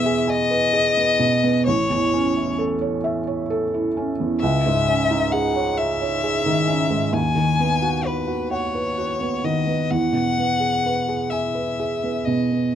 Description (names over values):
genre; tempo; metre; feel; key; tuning
neoclassical piano and strings; 44 BPM (dotted quarters); 6/8; rubato; unclear; A4 = 441 Hz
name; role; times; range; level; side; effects
clear violin; melody; 0.0-12.8 s; B4 to G#5; -22 LUFS; left 4 dB; none
felt-muted upright piano; accompaniment; 0.0-12.8 s; A1 to G#5; -21 LUFS; right 2 dB; none
room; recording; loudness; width
light reverb; dark, warm production; -19 LUFS; side -9 dB against mid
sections
0.0-12.8 A section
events
none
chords
0.0 E; 1.7 A; 4.4 C#madd9; 7.1 B/D#; 9.9 E